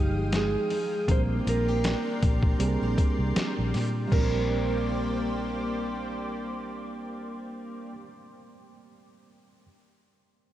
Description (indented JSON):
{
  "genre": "indie pop, bedroom pop",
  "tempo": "79 BPM",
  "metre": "4/4",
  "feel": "swing 55% on 16ths",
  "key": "Bb mixolydian",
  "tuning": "A4 = 440 Hz",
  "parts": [
    { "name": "clean lap steel guitar", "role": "melody", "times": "0.0-7.9 s", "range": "G4 to C5", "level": "-33 LUFS", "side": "right 4 dB", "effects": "wide subtle chorus, tape echo" },
    { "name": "mellow reed electric piano", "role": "accompaniment", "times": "0.0-9.7 s", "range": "F3 to G5", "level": "-34 LUFS", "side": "right 4 dB", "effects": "fast tremolo" },
    { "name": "picked steel-string acoustic guitar", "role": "accompaniment", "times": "0.0-8.1 s", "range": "F3 to C5", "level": "-34 LUFS", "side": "left 2 dB", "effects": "lush chorus, vibrato effect" },
    { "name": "lush unison pad", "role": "sustained chords", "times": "0.0-7.9 s", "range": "Ab3 to Eb6", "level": "-38 LUFS", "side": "equal", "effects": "chorus" },
    { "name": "vintage muted fingered electric bass", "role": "bass", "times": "0.0-7.9 s", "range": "G1 to Bb2", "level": "-29 LUFS", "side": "equal", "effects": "none" },
    { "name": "lo-fi sampler-style drum kit", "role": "drums", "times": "0.3-4.3 s", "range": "crash cymbal, hi-hat, kick drum, snare drum", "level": "-28 LUFS", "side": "equal", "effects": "overdrive" }
  ],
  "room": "moderate cathedral reverb, RT60 4.9 s",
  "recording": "dreamy mix soaked in reverb, cassette tape",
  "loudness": "-25 LUFS",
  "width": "side -13 dB against mid",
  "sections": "0.0-4.1 A section; 4.1-7.1 B section",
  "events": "none",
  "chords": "0.0 Fm9; 1.1 Bb69"
}